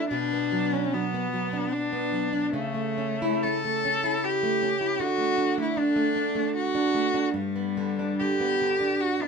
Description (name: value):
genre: romantic duo for cello and classical guitar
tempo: 75 BPM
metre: 3/4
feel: uneven beats, rubato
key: D major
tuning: A4 = 440 Hz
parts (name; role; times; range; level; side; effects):
- rich cello; melody; 0.0-9.3 s; G3 to A4; -26 LUFS; left 2 dB; none
- nylon-string guitar; accompaniment; 0.0-9.3 s; G2 to E4; -27 LUFS; right 2 dB; none
room: light reverb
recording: minimal, uncompressed stereo recording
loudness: -24 LUFS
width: side -5 dB against mid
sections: 0.0-9.3 A section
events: none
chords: 0.1 Bm; 2.5 A/C#; 5.0 D; 7.3 G